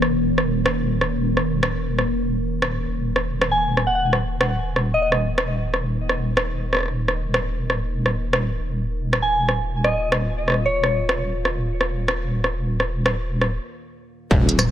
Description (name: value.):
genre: half-time drum and bass.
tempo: 168 BPM.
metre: 4/4.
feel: swing 55% on 16ths, half-time.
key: unclear.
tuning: A4 = 442 Hz.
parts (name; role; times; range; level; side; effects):
deep dark ambient pad; sustained chords; 0.0-14.7 s; Eb3 to F5; -28 LUFS; equal; chorus, built-in reverb, sidechain pumping.
deep soft wobble bass; bass; 0.0-14.7 s; Eb1; -24 LUFS; equal; chorus.
industrial drum kit; drums; 0.0-14.7 s; hi-hat, rim click, tambourine; -22 LUFS; equal; none.
soft synth bell; melody; 3.5-5.1, 9.2-11.2 s; Db5 to Ab5; -23 LUFS; equal; chorus, vintage 12-bit sampler grit, tape echo.
electronic kick drum; drums; 14.3-14.4 s; none; -18 LUFS; equal; distortion.
impact; sound effects; 14.3-14.7 s; none; -23 LUFS; left 1 dB; none.
room: light reverb, digital ambience.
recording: none.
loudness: -19 LUFS.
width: side -10 dB against mid.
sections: 0.0-14.3 A section.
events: break 13.6-14.3; impact 14.3-14.7.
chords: 0.0 Eb5.